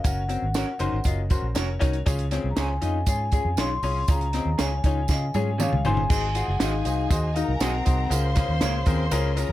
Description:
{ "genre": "uptempo 1960s-style soul", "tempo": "119 BPM", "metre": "4/4", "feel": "straight", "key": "unclear", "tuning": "A4 = 440 Hz", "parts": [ { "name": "vibraphone with soft mallets", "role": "melody", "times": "0.0-9.1 s", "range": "Eb5 to C6", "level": "-30 LUFS", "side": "left 2 dB", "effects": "none" }, { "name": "warm upright piano", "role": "accompaniment", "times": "0.0-9.5 s", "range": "Ab2 to Ab5", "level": "-31 LUFS", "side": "left 3 dB", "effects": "plate reverb" }, { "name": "vintage muted fingered electric bass", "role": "bass", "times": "0.0-9.5 s", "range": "F1 to Db3", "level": "-26 LUFS", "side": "equal", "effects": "none" }, { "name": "compact cocktail drum kit", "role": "drums", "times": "0.0-9.5 s", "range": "crash cymbal, hi-hat, kick drum, snare drum, toms", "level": "-25 LUFS", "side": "right 1 dB", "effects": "none" }, { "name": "tambourine", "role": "percussion", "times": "0.1-9.5 s", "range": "none", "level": "-39 LUFS", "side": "right 15 dB", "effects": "none" }, { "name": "electric guitar through a small old amp", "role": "riff", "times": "0.3-9.5 s", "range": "Bb3 to Ab4", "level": "-33 LUFS", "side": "left 9 dB", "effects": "none" }, { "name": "electric guitar through a small old amp", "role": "stabs", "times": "0.6-8.7 s", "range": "C4 to F5", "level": "-35 LUFS", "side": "right 9 dB", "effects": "plate reverb" }, { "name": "warm studio string section", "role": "second line", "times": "6.1-9.5 s", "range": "Ab4 to C6", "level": "-33 LUFS", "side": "right 2 dB", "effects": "none" } ], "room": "light reverb", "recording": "none", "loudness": "-22 LUFS", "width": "side -14 dB against mid", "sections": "0.0-6.1 A section; 6.1-9.5 B section", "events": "drum fill 5.1-6.1; upright piano fill 5.1-6.1", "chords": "0.0 Gb; 2.1 Db; 6.1 Ab7; 8.1 Db6" }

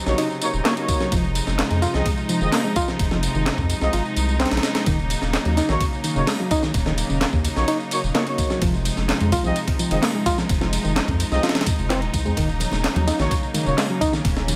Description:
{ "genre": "breakbeat, breaks", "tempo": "128 BPM", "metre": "4/4", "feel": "straight", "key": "Eb dorian", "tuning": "A4 = 440 Hz", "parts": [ { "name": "dark studio string section", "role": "sustained chords", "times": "0.0-14.6 s", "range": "C3 to Eb4", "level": "-30 LUFS", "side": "equal", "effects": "vintage 12-bit sampler grit, sidechain pumping" }, { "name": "warm brass ensemble", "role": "stabs", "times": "0.1-13.7 s", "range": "Bb3 to Eb5", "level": "-29 LUFS", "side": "equal", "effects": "digital delay" }, { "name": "saturated sub bass", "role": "bass", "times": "0.1-14.5 s", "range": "Eb1 to F2", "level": "-26 LUFS", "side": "equal", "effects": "none" }, { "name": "breakbeat sampler-style drum kit", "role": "drums", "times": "0.1-14.6 s", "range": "hi-hat, kick drum, ride cymbal, snare drum", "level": "-26 LUFS", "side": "equal", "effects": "studio reverb" }, { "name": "house drum kit", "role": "drums", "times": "0.1-14.6 s", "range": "handclaps, ride cymbal, tambourine", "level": "-33 LUFS", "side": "equal", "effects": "studio reverb" }, { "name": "bright reed electric piano", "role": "riff", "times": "0.2-14.5 s", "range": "Db3 to F4", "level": "-28 LUFS", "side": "equal", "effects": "tube saturation, vintage 12-bit sampler grit, digital delay" }, { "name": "congas and bongos", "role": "percussion", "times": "12.6-14.6 s", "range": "none", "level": "-34 LUFS", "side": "equal", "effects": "none" } ], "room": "light reverb, digital ambience", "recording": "none", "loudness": "-21 LUFS", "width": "mono", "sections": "0.0-14.6 A section", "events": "none", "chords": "0.0 Ebm7; 1.1 Fm7; 4.9 Ebm7; 8.6 Fm7; 12.4 Ebm7" }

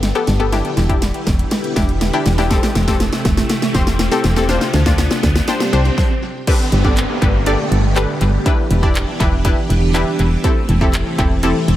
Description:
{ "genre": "dance-pop", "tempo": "121 BPM", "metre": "4/4", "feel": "straight", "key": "unclear", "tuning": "A4 = 440 Hz", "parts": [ { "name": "string machine, full ensemble", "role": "sustained chords", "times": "0.0-11.8 s", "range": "C3 to G4", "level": "-23 LUFS", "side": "right 1 dB", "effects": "phaser, ensemble chorus, sidechain pumping" }, { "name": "solid FM bass", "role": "bass", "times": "0.0-11.8 s", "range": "E1 to D2", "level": "-16 LUFS", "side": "equal", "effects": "sidechain pumping" }, { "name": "pop drum kit", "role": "drums", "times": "0.0-11.8 s", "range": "crash cymbal, handclaps, hi-hat, kick drum, snare drum", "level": "-18 LUFS", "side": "equal", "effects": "tape echo" }, { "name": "riser and downlifter", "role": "sound effects", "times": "0.1-10.4 s", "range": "none", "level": "-27 LUFS", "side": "equal", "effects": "none" }, { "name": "analog pluck", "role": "accompaniment", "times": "0.1-11.7 s", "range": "B3 to D5", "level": "-21 LUFS", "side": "left 2 dB", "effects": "chorus, sidechain pumping, tape echo" } ], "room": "light reverb, digital ambience", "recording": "echo-heavy mix", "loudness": "-14 LUFS", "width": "side -13 dB against mid", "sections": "0.0-6.5 A section; 6.5-11.8 B section", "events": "build-up 0.0-6.5; drum fill 0.0-6.0; riser 0.1-6.5; stop 6.0-6.5; drop 6.5-11.8", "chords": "0.0 Gadd9; 0.5 Em7; 2.5 Am7/E; 4.5 Dm7; 5.5 Csus2; 6.5 Gadd9; 8.5 Em7; 10.4 Am7/E" }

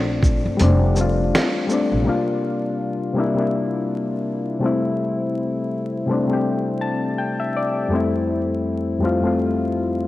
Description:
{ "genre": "lo-fi hip hop", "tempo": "82 BPM", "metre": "4/4", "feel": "swing 58% on 16ths", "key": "F major", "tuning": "A4 = 440 Hz", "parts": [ { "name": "soft electric-piano-like synth keys", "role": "accompaniment", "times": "0.0-10.1 s", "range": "F2 to A5", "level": "-20 LUFS", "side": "left 2 dB", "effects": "chorus, low-pass filter, cassette tape" }, { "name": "upright bass", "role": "bass", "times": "0.0-2.1 s", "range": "F1 to Bb1", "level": "-19 LUFS", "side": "equal", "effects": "none" }, { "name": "dusty soul sampler-style drum kit", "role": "drums", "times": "0.2-1.9 s", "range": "hi-hat, kick drum, shaker, snare drum", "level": "-21 LUFS", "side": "equal", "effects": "cassette tape" } ], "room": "moderate lush hall reverb, RT60 2.5 s", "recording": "home recording on cassette, vinyl crackle", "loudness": "-19 LUFS", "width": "side -15 dB against mid", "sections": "0.0-2.1 A section; 2.1-10.1 B section", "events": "kick muted 0.6-2.1; synth keys fill 6.5-7.9", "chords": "0.0 Bbmaj9; 0.6 F69; 2.1 C9sus4; 4.6 Am7/C; 7.9 Fmaj7" }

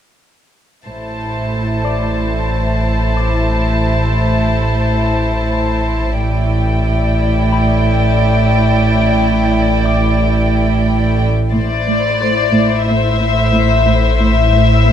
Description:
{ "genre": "cinematic", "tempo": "90 BPM", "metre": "4/4", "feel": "straight", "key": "A minor", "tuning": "A4 = 440 Hz", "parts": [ { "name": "warm chamber violin section", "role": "melody", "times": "0.9-14.9 s", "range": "D5 to A5", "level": "-20 LUFS", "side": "left 4 dB", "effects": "none" }, { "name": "warm chamber violin section", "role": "second line", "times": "0.9-14.9 s", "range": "E4 to D5", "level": "-19 LUFS", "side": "left 2 dB", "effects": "none" }, { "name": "warm chamber cello section", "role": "bass", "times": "0.9-14.9 s", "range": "A2", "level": "-19 LUFS", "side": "right 2 dB", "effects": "none" }, { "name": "warm chamber double bass section", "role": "bass", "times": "0.9-12.2 s", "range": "A1", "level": "-19 LUFS", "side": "right 2 dB", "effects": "none" }, { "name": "deep rumbling drone", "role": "drone", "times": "1.4-14.9 s", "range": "A1", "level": "-18 LUFS", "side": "equal", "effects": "built-in reverb, phaser" }, { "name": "concert harp", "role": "texture", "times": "1.8-14.9 s", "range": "C5 to E6", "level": "-27 LUFS", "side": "left 9 dB", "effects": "none" }, { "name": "warm chamber cello section", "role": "riff", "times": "11.5-14.9 s", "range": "A2 to A3", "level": "-19 LUFS", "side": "right 3 dB", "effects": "none" } ], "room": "light reverb", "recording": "close, detailed microphones", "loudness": "-12 LUFS", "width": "side -9 dB against mid", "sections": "0.9-11.5 A section; 11.5-14.9 B section", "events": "none", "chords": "0.9 Am" }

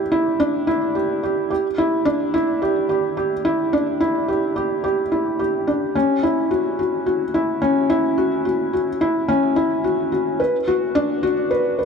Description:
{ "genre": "electronica", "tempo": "108 BPM", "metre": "4/4", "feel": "straight", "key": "unclear", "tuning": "A4 = 437 Hz", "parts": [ { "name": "felt-muted upright piano", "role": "solo", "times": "0.0-11.8 s", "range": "C#4 to B4", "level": "-18 LUFS", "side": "equal", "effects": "none" } ], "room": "wet huge ambient reverb, RT60 7.5 s", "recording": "none", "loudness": "-18 LUFS", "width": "side -6 dB against mid", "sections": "0.0-11.8 A section", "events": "none", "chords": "none" }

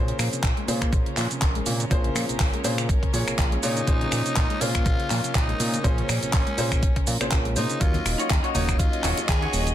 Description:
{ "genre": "nu-disco, nu disco", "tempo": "122 BPM", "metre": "4/4", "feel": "swing 55% on 16ths", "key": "unclear", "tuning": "A4 = 440 Hz", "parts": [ { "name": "warm concert grand piano", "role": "accompaniment", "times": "0.0-9.7 s", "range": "Gb3 to F5", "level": "-31 LUFS", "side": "equal", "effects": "sidechain pumping, ping-pong delay" }, { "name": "dark chamber string section", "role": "sustained chords", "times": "0.0-9.7 s", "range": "Db4 to Eb5", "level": "-34 LUFS", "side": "right 1 dB", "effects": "sidechain pumping" }, { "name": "fat analog bass", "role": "bass", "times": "0.0-9.7 s", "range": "Eb1 to Bb2", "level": "-27 LUFS", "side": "equal", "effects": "none" }, { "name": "soft round pluck", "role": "arpeggios", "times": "0.1-7.7 s", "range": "C3 to Ab3", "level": "-34 LUFS", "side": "left 1 dB", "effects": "chorus, sidechain pumping, ping-pong delay" }, { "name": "pop drum kit", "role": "drums", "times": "0.1-9.7 s", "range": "finger snaps, handclaps, hi-hat, shaker", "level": "-28 LUFS", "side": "right 1 dB", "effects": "overdrive" }, { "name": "electronic kick drum", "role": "drums", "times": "0.4-9.4 s", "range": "none", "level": "-23 LUFS", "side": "equal", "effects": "none" }, { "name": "growling tenor saxophone", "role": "melody", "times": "3.6-9.7 s", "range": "Db4 to Ab4", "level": "-31 LUFS", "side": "left 1 dB", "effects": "ping-pong delay" }, { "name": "congas", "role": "percussion", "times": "7.9-9.7 s", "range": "none", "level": "-34 LUFS", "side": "left 4 dB", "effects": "none" }, { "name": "clean electric guitar", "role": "riff", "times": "8.2-9.7 s", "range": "Eb4 to Db5", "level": "-30 LUFS", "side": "left 2 dB", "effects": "wide subtle chorus" } ], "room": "little or no reverb", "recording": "dense, heavily limited modern master", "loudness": "-21 LUFS", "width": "side -11 dB against mid", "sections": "0.0-9.7 A section", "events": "none", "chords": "0.0 Bbm9; 7.8 Ebm9" }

